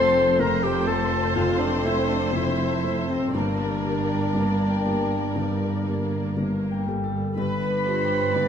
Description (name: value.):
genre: cinematic, emotional film score for orchestra.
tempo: 60 BPM.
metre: 4/4.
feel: rubato.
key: unclear.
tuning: A4 = 444 Hz.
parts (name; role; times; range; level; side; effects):
muted symphonic violin section; melody; 0.0-8.5 s; C5 to C6; -32 LUFS; left 1 dB; none.
mellow clarinet; second line; 0.0-8.5 s; C4 to C5; -26 LUFS; left 1 dB; none.
muted symphonic violin section; second line; 0.0-8.5 s; A4 to D5; -31 LUFS; left 3 dB; none.
felt-muted upright piano; accompaniment; 0.0-8.5 s; F1 to C5; -27 LUFS; left 2 dB; none.
muted symphonic viola section; accompaniment; 0.0-8.5 s; G3 to D4; -32 LUFS; right 3 dB; none.
concert harp; arpeggios; 0.0-8.5 s; F2 to A5; -33 LUFS; left 7 dB; none.
muted studio double bass section; bass; 0.0-8.5 s; F1 to G1; -32 LUFS; right 6 dB; none.
muted symphonic cello section; bass; 0.0-8.5 s; F2 to G2; -33 LUFS; right 6 dB; none.
room: wet recital hall reverb, RT60 1.4 s.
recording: none.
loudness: -21 LUFS.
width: side -8 dB against mid.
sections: 0.0-8.5 A section.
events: none.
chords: 0.0 F; 3.3 Gmadd9; 7.4 G7.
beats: 0.39 1.35 2.33 | 3.33 4.34 5.35 6.36 | 7.37 8.36.